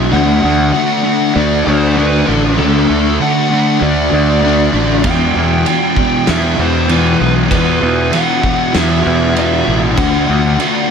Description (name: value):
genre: rock, shoegaze and dream pop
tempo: 97 BPM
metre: 4/4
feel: straight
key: unclear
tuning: A4 = 442 Hz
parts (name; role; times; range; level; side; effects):
- fuzz guitar; riff; 0.0-10.9 s; E2 to D4; -14 LUFS; left 1 dB; distortion, analog chorus
- fuzz fingered electric bass; bass; 0.0-10.6 s; A1 to E2; -15 LUFS; equal; overdrive
- biting lead guitar; melody; 0.1-10.9 s; A4 to G5; -18 LUFS; equal; overdrive, ping-pong delay
- loose indie drum kit; drums; 5.0-10.7 s; crash cymbal, kick drum, snare drum; -18 LUFS; right 2 dB; none
room: moderate huge ambient reverb, RT60 6.4 s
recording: dreamy mix soaked in reverb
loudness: -10 LUFS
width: side -6 dB against mid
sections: 0.0-10.9 A section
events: none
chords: 0.1 D; 5.0 Em; 10.0 D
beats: | 0.12 0.74 1.35 1.97 | 2.58 3.20 3.81 4.43 | 5.04 5.66 6.28 6.89 | 7.51 8.13 8.74 9.36 | 9.98 10.59